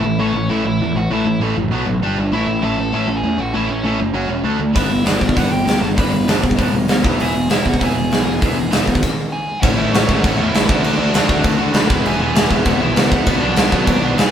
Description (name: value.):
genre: punk rock.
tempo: 197 BPM.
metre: 4/4.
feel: straight.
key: A major.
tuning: A4 = 440 Hz.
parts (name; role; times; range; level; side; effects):
nasal lead guitar with a parked wah; melody; 0.0-14.3 s; C#4 to B5; -24 LUFS; right 1 dB; overdrive.
sludgy distorted guitar; riff; 0.0-14.3 s; A2 to G4; -20 LUFS; left 5 dB; overdrive.
tight distorted guitar; riff; 0.0-14.3 s; A2 to G4; -22 LUFS; right 7 dB; distortion.
fuzz picked electric bass; bass; 0.0-14.3 s; E1 to E2; -23 LUFS; equal; overdrive.
big rock drum kit; drums; 4.8-14.3 s; crash cymbal, hi-hat, kick drum, snare drum; -16 LUFS; equal; none.
crunchy overdriven guitar; riff; 9.6-14.3 s; E2 to D4; -24 LUFS; left 1 dB; none.
room: moderate studio reverb, RT60 0.8 s.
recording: band playing live in one room.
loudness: -14 LUFS.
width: side -9 dB against mid.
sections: 0.0-9.6 A section; 9.6-14.3 B section.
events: stop 9.0-9.6.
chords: 0.0 A; 1.7 B5; 2.0 G5; 2.3 A; 4.2 F#5; 4.5 D5; 4.8 G; 7.0 E; 9.6 A; 10.7 D; 11.9 E; 13.3 Bm.